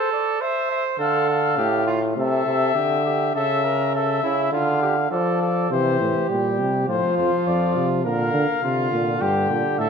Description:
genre	classical, imitative canzona for brass ensemble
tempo	102 BPM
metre	4/4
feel	straight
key	D minor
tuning	A4 = 440 Hz
part	warm cornet	melody	0.0-9.9 s	G4 to G5	-24 LUFS	left 9 dB	none
part	warm trumpet	second line	0.0-9.9 s	E4 to C5	-25 LUFS	right 5 dB	none
part	clear trombone	accompaniment	1.0-9.9 s	A2 to G3	-23 LUFS	right 1 dB	none
part	warm bass trombone	bass	5.7-9.9 s	F2 to D3	-24 LUFS	right 1 dB	none
room	wet recital hall reverb, RT60 1.8 s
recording	minimal, uncompressed stereo recording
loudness	-19 LUFS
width	side -6 dB against mid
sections	0.0-5.7 A section; 5.7-9.9 B section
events	none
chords	0.0 Am; 1.0 Dm; 2.2 C; 3.4 A/C#; 4.5 Dm; 5.7 C; 6.9 F5; 8.0 Bb; 9.2 Edim/G (rootless)

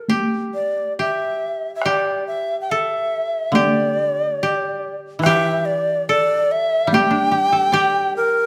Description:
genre	japanese traditional, Japanese chamber music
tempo	70 BPM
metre	4/4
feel	rubato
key	unclear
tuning	A4 = 440 Hz
part	breathy bright long shakuhachi	melody	0.0-8.5 s	Bb4 to G5	-22 LUFS	equal	none
part	koto	second line	0.0-8.5 s	G4 to A4	-25 LUFS	equal	none
part	solo taiko drums	percussion	0.1-7.1 s	none	-24 LUFS	equal	none
part	koto	accompaniment	3.5-8.5 s	D3 to D5	-27 LUFS	equal	none
room	moderate recital hall reverb, RT60 1.5 s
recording	none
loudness	-19 LUFS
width	mono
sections	0.0-8.5 A section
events	none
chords	none

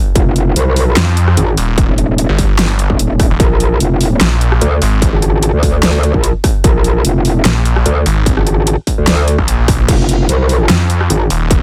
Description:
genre	heavy wobble dubstep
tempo	148 BPM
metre	4/4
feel	swing 54% on 16ths, half-time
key	unclear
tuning	A4 = 440 Hz
part	metallic wobble bass	bass	0.2-11.3 s	Eb1 to D2	-14 LUFS	equal	chorus, overdrive
part	dubstep drum kit	drums	0.2-11.6 s	crash cymbal, hi-hat, rim click, snare drum	-19 LUFS	equal	none
part	electronic kick drum	drums	0.2-11.6 s	none	-16 LUFS	equal	distortion
part	snarling distorted saw bass	bass	1.0-11.6 s	Eb1 to F2	-15 LUFS	equal	distortion, overdrive
room	digital ambience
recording	none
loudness	-12 LUFS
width	mono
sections	0.0-11.6 A section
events	none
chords	0.0 N.C.; 3.4 Bb; 9.9 F5

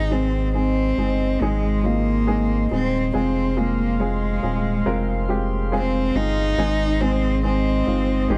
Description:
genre	pop ballad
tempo	70 BPM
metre	4/4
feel	straight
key	unclear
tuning	A4 = 440 Hz
part	warm cello	melody	0.0-8.4 s	Ab3 to Eb4	-25 LUFS	equal	none
part	warm baby grand piano	accompaniment	0.0-8.4 s	Ab2 to Bb4	-28 LUFS	equal	none
part	chorused pulse-width pad	sustained chords	0.0-8.4 s	Ab3 to C6	-33 LUFS	equal	none
part	saturated sub bass	bass	0.0-8.4 s	Eb1 to Ab1	-26 LUFS	equal	none
room	little or no reverb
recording	dry, close 1970s-style studio recording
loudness	-21 LUFS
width	mono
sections	0.0-8.4 A section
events	none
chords	0.0 Ab; 3.1 Fm; 6.6 Ab

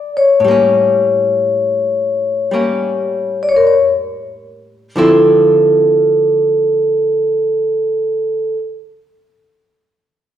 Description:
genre	jazz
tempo	45-62 BPM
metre	4/4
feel	swing 69% on 8ths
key	D minor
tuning	A4 = 439 Hz
part	vibraphone with medium mallets	melody	0.0-8.6 s	A4 to D5	-12 LUFS	left 1 dB	none
part	archtop guitar, miked and amplified	accompaniment	0.0-8.6 s	A2 to F4	-18 LUFS	left 1 dB	none
room	wet recital hall reverb, RT60 1.4 s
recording	recorded in a church or concert hall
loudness	-11 LUFS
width	side -10 dB against mid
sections	0.0-5.0 A section; 5.0-10.3 B section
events	slowing down 0.0-5.0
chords	0.4 A7b9; 5.0 Dm9

